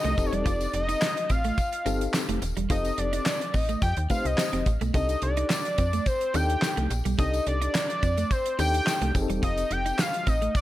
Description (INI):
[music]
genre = early-eighties boogie funk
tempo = 107 BPM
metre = 4/4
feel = straight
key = unclear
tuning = A4 = 439 Hz
[part]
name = fat analog lead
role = melody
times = 0.0-10.6 s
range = C5 to G5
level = -28 LUFS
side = left 1 dB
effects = none
[part]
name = FM electric piano with tremolo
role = accompaniment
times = 0.0-10.1 s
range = C4 to C5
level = -33 LUFS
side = left 4 dB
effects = none
[part]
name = clean electric guitar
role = riff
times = 0.0-10.5 s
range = G3 to F4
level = -35 LUFS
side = right 5 dB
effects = analog chorus
[part]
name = slap-like FM bass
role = bass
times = 0.0-10.5 s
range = Eb1 to F2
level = -28 LUFS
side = equal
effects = none
[part]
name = damped 70s drum kit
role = drums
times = 0.0-10.6 s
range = handclaps, hi-hat, kick drum, snare drum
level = -28 LUFS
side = equal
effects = gated reverb
[part]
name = tambourine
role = percussion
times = 0.2-10.6 s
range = none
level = -41 LUFS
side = left 10 dB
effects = none
[sound]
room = light reverb, studio ambience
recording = none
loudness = -23 LUFS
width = side -15 dB against mid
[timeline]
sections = 0.0-10.6 A section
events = none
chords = 0.2 F9; 4.9 Cm69; 9.2 F9